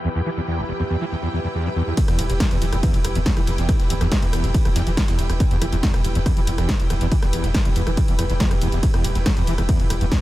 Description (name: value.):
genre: driving peak-time techno.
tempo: 140 BPM.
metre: 4/4.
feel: straight.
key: E minor.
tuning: A4 = 442 Hz.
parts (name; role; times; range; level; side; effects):
overdriven acid bass; riff; 0.0-10.2 s; E1 to E3; -24 LUFS; equal; distortion, ensemble chorus, sidechain pumping, tape echo.
rich studio string section; texture; 0.0-10.2 s; E4 to G5; -29 LUFS; right 1 dB; sidechain pumping.
punchy analog drum machine; drums; 0.2-10.2 s; hi-hat, ride cymbal, rim click, snare drum; -27 LUFS; equal; sidechain pumping on hats, low-pass filter on hats, sidechain pumping on cymbals, low-pass filter on cymbals, low-pass filter on snare, low-pass filter on room.
dusty soul sampler-style drum kit; drums; 2.0-10.2 s; hi-hat, snare drum; -41 LUFS; right 1 dB; none.
electronic kick drum; drums; 2.0-10.2 s; none; -20 LUFS; equal; none.
saturated sub bass; bass; 2.1-10.1 s; E1; -24 LUFS; equal; tube saturation, sidechain pumping, low-pass filter.
room: light reverb.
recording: low-pass filter.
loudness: -18 LUFS.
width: side -16 dB against mid.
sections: 0.0-2.0 A section; 2.0-10.2 B section.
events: drop 2.0-10.2.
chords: 0.0 Em.